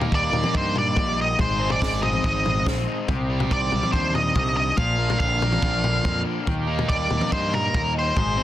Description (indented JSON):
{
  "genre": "indie rock",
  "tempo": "142 BPM",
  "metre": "4/4",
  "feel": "straight",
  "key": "unclear",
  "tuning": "A4 = 441 Hz",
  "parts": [
    { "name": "biting overdriven guitar", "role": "riff", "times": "0.0-8.4 s", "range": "F3 to Ab4", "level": "-30 LUFS", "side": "right 6 dB", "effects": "lush chorus" },
    { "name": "overdriven electric guitar", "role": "riff", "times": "0.0-8.4 s", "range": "Ab2 to Eb4", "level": "-30 LUFS", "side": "left 6 dB", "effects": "none" },
    { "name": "growling fingered electric bass", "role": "bass", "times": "0.0-8.4 s", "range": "Ab1 to G2", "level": "-27 LUFS", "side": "equal", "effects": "overdrive" },
    { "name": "compact cocktail drum kit", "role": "drums", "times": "0.0-8.3 s", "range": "kick drum, snare drum, toms", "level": "-26 LUFS", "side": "left 1 dB", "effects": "none" },
    { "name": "octave-fuzz lead guitar", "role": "melody", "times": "0.2-8.4 s", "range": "Bb4 to F5", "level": "-24 LUFS", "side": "equal", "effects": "distortion, analog delay" }
  ],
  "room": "little or no reverb",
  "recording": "dense, heavily limited modern master",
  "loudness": "-20 LUFS",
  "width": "side -13 dB against mid",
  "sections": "0.0-8.4 A section",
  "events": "none",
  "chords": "0.0 Eb; 1.4 Ab; 3.1 Cmadd9; 4.8 Bb; 6.5 Eb"
}